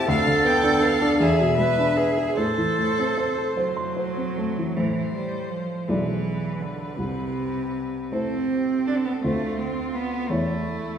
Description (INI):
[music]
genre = classical, slow romantic movement for piano trio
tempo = 48-57 BPM (dotted quarters)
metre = 6/8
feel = rubato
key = A minor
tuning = A4 = 440 Hz
[part]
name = rich violin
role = melody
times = 0.0-11.0 s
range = E4 to G5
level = -29 LUFS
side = left 5 dB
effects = none
[part]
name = rich cello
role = second line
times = 0.0-11.0 s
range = C3 to B4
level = -25 LUFS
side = right 4 dB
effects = none
[part]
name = dark baby grand piano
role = accompaniment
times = 0.0-11.0 s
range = B1 to C6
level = -25 LUFS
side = equal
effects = none
[sound]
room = wet recital hall reverb, RT60 1.6 s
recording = heard from further back in the room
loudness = -21 LUFS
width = side -8 dB against mid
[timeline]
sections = 0.0-4.8 A section; 4.8-11.0 A section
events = none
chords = 0.1 Dm6; 1.2 E7; 2.4 Am; 5.9 E7/B; 7.0 Am/C; 9.2 Dm7; 10.3 A/E